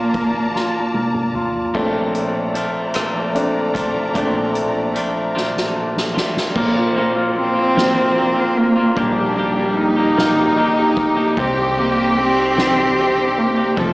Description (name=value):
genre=six-eight pop ballad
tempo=50 BPM (dotted quarters)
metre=6/8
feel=straight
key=Bb major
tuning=A4 = 439 Hz
part: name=rich cello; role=melody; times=0.0-1.3, 7.0-13.9 s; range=G3 to C4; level=-19 LUFS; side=right 1 dB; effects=none
part: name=clear baby grand piano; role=accompaniment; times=0.0-13.9 s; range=F3 to G4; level=-20 LUFS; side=left 1 dB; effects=slapback echo
part: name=warm studio string section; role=sustained chords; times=0.0-6.5 s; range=A3 to Bb5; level=-26 LUFS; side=left 1 dB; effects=none
part: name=upright bass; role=bass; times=0.0-13.9 s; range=F1 to C2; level=-31 LUFS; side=equal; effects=none
part: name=soft-mallet drum kit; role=drums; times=0.1-13.9 s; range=crash cymbal, hi-hat, kick drum, ride cymbal, rim click, snare drum, toms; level=-25 LUFS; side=equal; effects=none
part: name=clean electric guitar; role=arpeggios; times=1.7-13.9 s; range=F2 to G4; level=-24 LUFS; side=right 1 dB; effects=warbly pitch drift
part: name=warm studio violin section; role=second line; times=6.6-13.9 s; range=C4 to A4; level=-20 LUFS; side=equal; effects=slapback echo
room=moderate club ambience, RT60 0.5 s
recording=live gig heard through the venue's PA, club reverb, small speaker sound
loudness=-15 LUFS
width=side -21 dB against mid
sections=0.0-1.7 A section; 1.7-6.6 B section; 6.6-13.9 C section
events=drum fill 0.5-1.7, 5.4-6.6; grand piano solo 1.7-6.6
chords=0.0 Bbmaj7; 6.6 Bbsus2; 9.0 Ebmaj7/Bb; 11.4 Cm